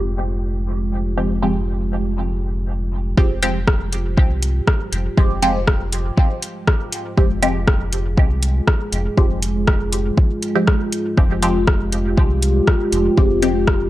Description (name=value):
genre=dub techno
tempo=120 BPM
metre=4/4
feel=straight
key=F minor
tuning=A4 = 440 Hz
part: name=dark analog pad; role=sustained chords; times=0.0-13.9 s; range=Ab3 to Ab4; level=-24 LUFS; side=equal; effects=chorus, phaser, sidechain pumping
part: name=round analog bass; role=bass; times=0.0-13.9 s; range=F1 to C2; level=-22 LUFS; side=equal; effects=tube saturation, sidechain pumping
part: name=filtered dub chord stab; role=stabs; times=1.2-13.6 s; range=F3 to G4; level=-23 LUFS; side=equal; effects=phaser, sidechain pumping, dub echo
part: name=electronic kick drum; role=drums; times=3.2-13.8 s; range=none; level=-15 LUFS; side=equal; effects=overdrive
part: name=deep house drum kit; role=drums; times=3.4-13.8 s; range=hi-hat, rim click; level=-23 LUFS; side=left 1 dB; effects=overdrive
room=digital ambience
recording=dry, gritty hardware recording, low-pass filter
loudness=-16 LUFS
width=side -15 dB against mid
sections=0.0-3.2 A section; 3.2-13.9 B section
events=filter sweep on synth stab 0.0-3.2; filter sweep 0.0-3.2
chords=0.0 Fmadd9